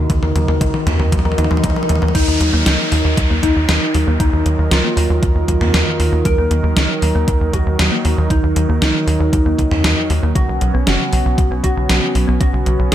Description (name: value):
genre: synthwave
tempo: 117 BPM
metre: 4/4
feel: straight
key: Eb minor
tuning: A4 = 443 Hz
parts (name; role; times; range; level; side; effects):
- warm analog pad; sustained chords; 0.0-12.9 s; Eb3 to Bb4; -23 LUFS; right 3 dB; chorus, sidechain pumping
- thumb-piano-like synth pluck; arpeggios; 0.0-12.9 s; C#3 to Bb4; -25 LUFS; left 3 dB; chorus, cassette tape, ping-pong delay
- tight sequencer bass; bass; 0.0-12.9 s; F#1 to Eb2; -16 LUFS; equal; sidechain pumping
- electronic kick drum; drums; 0.1-12.5 s; none; -18 LUFS; equal; overdrive
- gated 80s digital drum machine; drums; 0.1-12.9 s; crash cymbal, hi-hat, snare drum, toms; -20 LUFS; equal; gated reverb, gated reverb snare, overdrive
- swell and downlifter; sound effects; 1.3-6.3 s; none; -25 LUFS; equal; none
- expressive synth lead; melody; 2.1-12.9 s; Eb4 to Bb4; -22 LUFS; equal; analog chorus, ping-pong delay
- soft synth bell; second line; 2.1-12.9 s; Eb4 to Bb4; -27 LUFS; left 1 dB; chorus, phaser, ping-pong delay
room: light reverb, digital ambience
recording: bright 1980s-style digital production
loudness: -13 LUFS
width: side -11 dB against mid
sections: 0.0-2.1 A section; 2.1-12.9 B section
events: drum fill 0.0-2.1; filter sweep on analog synth pad 0.0-2.1; filter sweep on synth arpeggio sound 0.0-2.1; swell 1.3-2.1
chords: 0.0 Ebm; 10.4 Bsus2